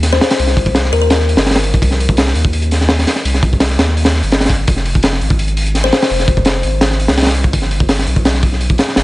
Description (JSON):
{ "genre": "drum and bass, jungle", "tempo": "168 BPM", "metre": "4/4", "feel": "straight", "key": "C minor", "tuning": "A4 = 440 Hz", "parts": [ { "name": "saturated sub bass", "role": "bass", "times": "0.0-9.0 s", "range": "F1 to Eb2", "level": "-16 LUFS", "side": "equal", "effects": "none" }, { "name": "crunchy breakbeat drum kit", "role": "drums", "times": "0.0-9.0 s", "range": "hi-hat, kick drum, snare drum", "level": "-13 LUFS", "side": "equal", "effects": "none" }, { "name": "kalimba", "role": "melody", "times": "0.1-1.1, 5.8-6.1 s", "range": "Bb4 to C5", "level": "-21 LUFS", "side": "left 5 dB", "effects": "dub echo" } ], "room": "studio reverb", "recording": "nothing above 10.7 kHz", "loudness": "-11 LUFS", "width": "side -18 dB against mid", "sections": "0.0-9.0 A section", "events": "none", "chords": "0.0 Cm; 4.7 Fm; 7.5 G" }